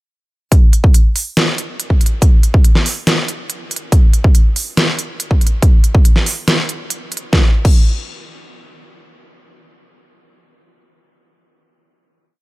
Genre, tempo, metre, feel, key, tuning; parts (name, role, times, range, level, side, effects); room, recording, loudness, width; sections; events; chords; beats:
future bass; 141 BPM; 4/4; half-time
dubstep drum kit; drums; 0.5-7.8 s; crash cymbal, hi-hat, snare drum; -17 LUFS; equal
electronic kick drum; drums; 0.5-7.8 s; -10 LUFS; equal
little or no reverb; -11 LUFS; side -20 dB against mid
0.5-7.3 drop; 7.3-10.7 final hit
drop 0.5-7.3
| 0.52 0.94 1.37 1.79 | 2.22 2.65 3.07 3.50 | 3.92 4.35 4.77 5.20 | 5.62 6.05 6.48 6.90 | 7.33 7.75